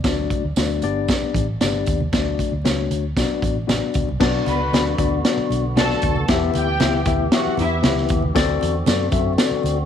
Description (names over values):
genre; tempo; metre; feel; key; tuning
uptempo 1960s-style soul; 116 BPM; 4/4; straight; unclear; A4 = 440 Hz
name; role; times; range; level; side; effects
tine electric piano; accompaniment; 0.0-9.8 s; A3 to E5; -22 LUFS; left 9 dB; medium stereo tremolo
vintage muted fingered electric bass; bass; 0.0-9.9 s; G1 to F#2; -24 LUFS; equal; none
raw garage drum kit; drums; 0.0-9.8 s; crash cymbal, hi-hat, kick drum, snare drum; -21 LUFS; right 1 dB; none
congas; percussion; 0.0-9.8 s; none; -30 LUFS; right 5 dB; none
tambourine; percussion; 0.0-3.8, 8.4-9.5 s; none; -36 LUFS; right 12 dB; none
tonewheel organ; sustained chords; 4.2-9.9 s; D3 to G4; -29 LUFS; right 2 dB; slow rotary speaker
muted studio string section; second line; 4.5-7.8 s; E4 to B5; -26 LUFS; right 2 dB; none
room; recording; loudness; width
light reverb; 1960s-style stereo with parts hard left and right, vinyl crackle; -17 LUFS; side -9 dB against mid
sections
0.0-4.2 A section; 4.2-9.9 B section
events
none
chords
0.0 D; 0.8 G; 2.1 D; 3.2 Bm; 6.3 Em; 8.4 D7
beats
| 0.04 0.56 1.09 1.61 | 2.13 2.65 3.17 3.69 | 4.21 4.73 5.25 5.76 | 6.28 6.80 7.32 7.84 | 8.35 8.87 9.39